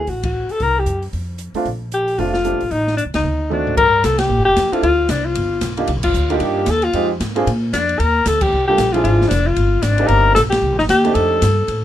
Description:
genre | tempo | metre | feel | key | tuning
jazz, small-group swing and bop | 228 BPM | 4/4 | swing 60% on 8ths | unclear | A4 = 440 Hz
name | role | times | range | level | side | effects
breathy alto saxophone | melody | 0.0-11.8 s | D4 to Bb4 | -16 LUFS | left 3 dB | none
upright bass | bass | 0.0-11.8 s | F1 to Bb2 | -20 LUFS | equal | none
open jazz drum kit | drums | 0.1-11.8 s | crash cymbal, hi-hat, kick drum, ride cymbal, snare drum, toms | -25 LUFS | equal | none
clear upright piano | accompaniment | 1.6-11.4 s | F3 to A4 | -20 LUFS | right 4 dB | none
room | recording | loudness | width
little or no reverb | minimal, uncompressed stereo recording | -14 LUFS | side -12 dB against mid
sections
0.0-3.8 A section; 3.8-11.8 B section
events
band accent 0.2, 3.1, 4.2, 6.0, 8.4, 10.5; drum fill 3.5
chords
0.0 D (rootless); 0.6 C5; 1.1 F; 1.7 Bbmaj7; 2.7 Adim; 3.2 D7b9; 3.8 Gm7; 4.8 Dm7; 5.4 G7alt; 5.9 Cm11 (rootless); 6.9 Fm7; 7.5 Bb; 8.0 Ebmaj9; 9.0 Dm7b5; 9.6 G5; 10.1 Cm9; 11.2 F13

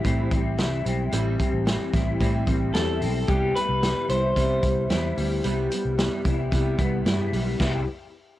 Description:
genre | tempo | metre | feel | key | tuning
jangly indie pop | 111 BPM | 4/4 | straight | C major | A4 = 440 Hz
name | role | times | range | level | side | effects
fingerpicked steel-string acoustic guitar | accompaniment | 0.0-7.8 s | A2 to E4 | -30 LUFS | right 6 dB | none
electric guitar through a small old amp | arpeggios | 0.0-7.8 s | G3 to E4 | -29 LUFS | left 6 dB | ensemble chorus, tape echo
vintage muted fingered electric bass | bass | 0.0-7.8 s | A1 to C3 | -27 LUFS | equal | none
vintage drum kit | drums | 0.0-7.7 s | crash cymbal, hi-hat, kick drum, snare drum | -26 LUFS | equal | cassette tape
electric guitar through a small old amp | melody | 2.7-7.0 s | G4 to C5 | -26 LUFS | left 1 dB | spring reverb, cassette tape
room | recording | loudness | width
light reverb | home recording on cassette | -22 LUFS | side -15 dB against mid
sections
0.0-3.3 A section; 3.3-7.6 B section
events
none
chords
0.0 Am7; 3.3 Cmaj7

